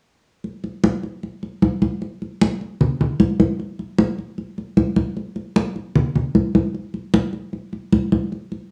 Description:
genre	latin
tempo	152 BPM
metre	4/4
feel	straight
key	none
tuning	none
part	congas	percussion	0.4-8.7 s	none	-20 LUFS	equal	none
room	wet booth ambience, RT60 0.2 s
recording	home recording on cassette, studio reverb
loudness	-21 LUFS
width	mono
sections	0.4-8.7 A section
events	none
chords	none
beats	| 0.44 0.83 1.23 1.62 | 2.02 2.41 2.80 3.20 | 3.59 3.99 4.38 4.78 | 5.17 5.56 5.96 6.35 | 6.75 7.14 7.53 7.93 | 8.32

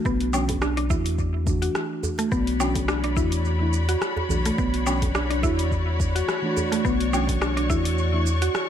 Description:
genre	organic downtempo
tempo	106 BPM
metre	4/4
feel	swing 55% on 16ths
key	B minor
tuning	A4 = 440 Hz
part	muted felt-like synth keys	accompaniment	0.0-8.3 s	E3 to F#4	-30 LUFS	right 2 dB	chorus, sidechain pumping, tape echo
part	mallet-like synth pluck	arpeggios	0.0-8.7 s	A3 to F#4	-27 LUFS	equal	chorus, tape echo
part	warm sub bass	bass	0.1-8.5 s	B1 to E2	-25 LUFS	equal	none
part	deep house drum kit	drums	0.1-8.7 s	hi-hat, rim click, shaker, woodblock	-30 LUFS	left 1 dB	none
part	electronic kick drum	drums	0.1-7.8 s	none	-28 LUFS	equal	none
part	djembe	percussion	0.5-7.8 s	none	-33 LUFS	right 2 dB	none
part	rich symphonic string section	sustained chords	2.3-8.7 s	F#4 to C#6	-30 LUFS	left 2 dB	vintage 12-bit sampler grit, sidechain pumping
room	light reverb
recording	none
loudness	-21 LUFS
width	side -9 dB against mid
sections	0.0-8.7 A section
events	none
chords	0.0 Bmadd9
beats	| 0.05 0.62 1.19 1.75 | 2.32 2.88 3.45 4.02 | 4.58 5.15 5.71 6.28 | 6.85 7.41 7.98 8.54

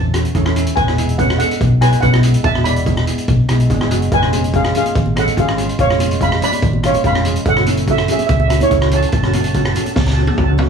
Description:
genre	calypso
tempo	144 BPM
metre	4/4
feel	straight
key	unclear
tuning	A4 = 438 Hz
part	steel pan	melody	0.0-10.5 s	E4 to B5	-18 LUFS	right 2 dB	none
part	hollow-body short-scale fingered electric bass	bass	0.0-10.7 s	E1 to E2	-17 LUFS	equal	none
part	steel pan	accompaniment	0.1-10.7 s	G#3 to G#4	-21 LUFS	equal	none
part	street-band drum kit	drums	0.1-10.7 s	hi-hat, kick drum, rim click, snare drum, toms	-19 LUFS	equal	none
part	congas	percussion	4.3-10.7 s	none	-27 LUFS	equal	none
room	light reverb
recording	none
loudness	-13 LUFS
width	side -6 dB against mid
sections	0.0-10.7 A section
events	drum fill 10.0-10.7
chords	0.0 A; 0.8 Eadd9; 4.1 C#7/E#; 7.5 F#m7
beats	0.35 | 0.77 1.18 1.60 2.02 | 2.44 2.86 3.28 3.69 | 4.11 4.53 4.95 5.37 | 5.79 6.20 6.62 7.04 | 7.46 7.88 8.29 8.71 | 9.13 9.54 9.96 10.38

